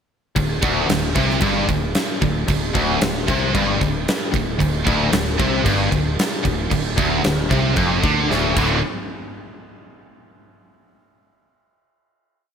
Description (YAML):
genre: hard rock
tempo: 113 BPM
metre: 4/4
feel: straight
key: D minor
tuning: A4 = 445 Hz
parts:
  - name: overdriven semi-hollow guitar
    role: riff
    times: 0.4-8.8 s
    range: D2 to D3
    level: -25 LUFS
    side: right 1 dB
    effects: ensemble chorus
  - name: scooped high-gain guitar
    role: riff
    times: 0.4-8.8 s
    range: D2 to D3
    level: -23 LUFS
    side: right 9 dB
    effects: distortion
  - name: tight distorted guitar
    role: riff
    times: 0.4-8.8 s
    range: D2 to D3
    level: -24 LUFS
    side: left 9 dB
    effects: distortion
  - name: modern bright fingered electric bass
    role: bass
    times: 0.4-8.8 s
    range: D1 to D2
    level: -26 LUFS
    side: equal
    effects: none
  - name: huge arena drum kit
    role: drums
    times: 0.4-8.7 s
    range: crash cymbal, kick drum, snare drum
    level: -22 LUFS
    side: equal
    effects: gated reverb
room: light reverb, small room ambience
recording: bright 1980s-style digital production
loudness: -17 LUFS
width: side -7 dB against mid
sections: 0.4-8.8 riff; 8.8-10.9 final hit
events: drum fill 8.3-8.8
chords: 0.4 Dm; 8.6 D5; 8.8 N.C.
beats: | 0.35 0.88 1.41 1.94 | 2.47 3.00 3.53 4.06 | 4.59 5.12 5.65 6.18 | 6.71 7.24 7.77 8.30